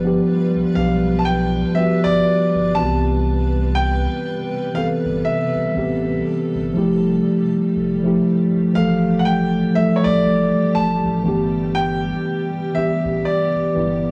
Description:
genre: contemporary R&B.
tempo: 60 BPM.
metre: 4/4.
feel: swing 58% on 16ths.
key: G mixolydian.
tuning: A4 = 439 Hz.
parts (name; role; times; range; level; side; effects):
mellow tine electric piano; accompaniment; 0.0-14.1 s; E3 to A4; -21 LUFS; equal; cassette tape.
granular cloud pad; sustained chords; 0.0-14.1 s; C3 to B4; -28 LUFS; equal; built-in reverb, cassette tape.
warm sub bass; bass; 0.0-14.1 s; F1 to C2; -28 LUFS; equal; none.
bright grand piano; melody; 0.8-14.1 s; C#5 to A5; -25 LUFS; equal; cassette tape, analog delay.
room: light reverb, digital ambience.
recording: home recording on cassette, small room ambience.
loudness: -19 LUFS.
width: mono.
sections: 0.0-14.1 A section.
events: none.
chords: 0.0 G7; 2.8 Cmaj7; 6.8 Fmaj9; 11.3 G6.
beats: 0.25 1.25 2.25 | 3.25 4.25 5.25 6.25 | 7.25 8.25 9.25 10.25 | 11.25 12.25 13.25.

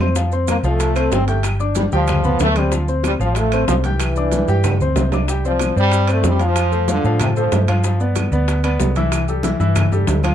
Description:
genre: latin, salsa.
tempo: 188 BPM.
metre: 4/4.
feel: straight.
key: unclear.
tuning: A4 = 440 Hz.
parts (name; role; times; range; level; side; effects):
clear concert grand piano; accompaniment; 0.0-10.3 s; E3 to G6; -22 LUFS; left 2 dB; none.
hollow-body short-scale fingered electric bass; bass; 0.0-10.3 s; G1 to A2; -18 LUFS; equal; none.
claves; percussion; 0.0-10.3 s; none; -33 LUFS; right 1 dB; none.
bongos; percussion; 0.2-10.2 s; none; -29 LUFS; left 6 dB; none.
congas; percussion; 0.2-10.3 s; none; -26 LUFS; left 1 dB; none.
maracas; percussion; 0.2-10.3 s; none; -34 LUFS; right 7 dB; none.
bright trombone section; melody; 0.5-7.7 s; C3 to C4; -21 LUFS; equal; none.
timbales; percussion; 0.5-10.3 s; none; -28 LUFS; right 7 dB; none.
room: light reverb.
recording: dark, warm production.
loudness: -15 LUFS.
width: side -10 dB against mid.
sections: 0.0-5.3 A section; 5.3-10.3 B section.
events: drum fill 4.6-5.3.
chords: 0.2 F; 1.4 G7; 2.7 Dm7; 4.0 Cadd9; 5.3 Csus2; 6.6 F; 7.8 G7; 9.1 C6.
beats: | 0.15 0.47 0.80 1.12 | 1.44 1.76 2.08 2.40 | 2.72 3.04 3.36 3.68 | 4.00 4.32 4.64 4.96 | 5.28 5.60 5.92 6.24 | 6.56 6.88 7.20 7.52 | 7.84 8.16 8.48 8.80 | 9.12 9.43 9.75 10.07.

